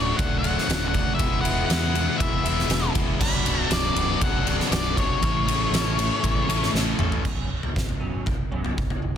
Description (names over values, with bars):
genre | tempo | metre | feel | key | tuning
quiet-loud alternative rock | 119 BPM | 4/4 | straight | B dorian | A4 = 440 Hz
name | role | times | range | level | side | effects
octave-fuzz lead guitar | melody | 0.0-6.7 s | C#5 to B5 | -27 LUFS | left 3 dB | distortion, slapback echo
overdriven electric guitar | riff | 0.0-7.2 s | B1 to A4 | -31 LUFS | right 12 dB | none
sludgy distorted guitar | riff | 0.0-7.2 s | B1 to A4 | -29 LUFS | left 11 dB | overdrive
modern bright picked electric bass | bass | 0.0-9.2 s | B0 to E2 | -28 LUFS | equal | none
oversized low-tuned drum kit | drums | 0.2-9.0 s | crash cymbal, kick drum, ride cymbal, snare drum, toms | -24 LUFS | right 1 dB | none
electric guitar through a small old amp | arpeggios | 7.2-9.1 s | F#2 to C#4 | -35 LUFS | right 2 dB | analog chorus
room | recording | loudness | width
light reverb, small room ambience | dense, heavily limited modern master | -21 LUFS | side -9 dB against mid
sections
0.0-7.2 A section; 7.2-9.2 B section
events
drum fill 6.7-7.2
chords
0.0 D; 1.2 E; 3.2 Bm; 5.2 A; 7.2 Bsus2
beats
0.18 0.68 | 1.19 1.69 2.19 2.70 | 3.20 3.71 4.21 4.71 | 5.22 5.72 6.23 6.74 | 7.25 7.76 8.27 8.78